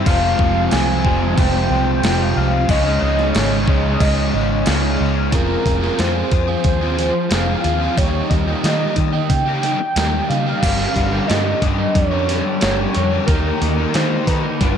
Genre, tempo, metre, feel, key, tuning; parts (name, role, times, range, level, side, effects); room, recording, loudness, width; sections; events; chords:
rock, shoegaze and dream pop; 91 BPM; 4/4; straight; F minor from 5.3 s; A4 = 439 Hz
warm velvety synth lead; melody; 0.0-14.8 s; Bb4 to Ab5; -22 LUFS; equal; chorus, analog delay
biting overdriven guitar; riff; 0.0-14.8 s; Db3 to B4; -24 LUFS; right 11 dB; reverse reverb
crunchy overdriven guitar; riff; 0.0-14.8 s; Db3 to B4; -24 LUFS; left 11 dB; ensemble chorus
crunchy overdriven guitar; riff; 0.0-5.3, 10.6-14.8 s; F2 to Eb4; -23 LUFS; equal
vintage muted fingered electric bass; bass; 0.1-14.8 s; F1 to Eb3; -21 LUFS; equal
clean 12-bit digital drum machine; drums; 0.1-14.8 s; crash cymbal, hi-hat, kick drum, snare drum; -21 LUFS; equal
light reverb; -15 LUFS; side -8 dB against mid
0.0-5.3 A section; 5.3-14.8 B section
0.1 Fmadd9; 2.7 Dbsus2; 5.3 Fm; 8.0 Eb; 10.6 Gdim; 13.3 Eb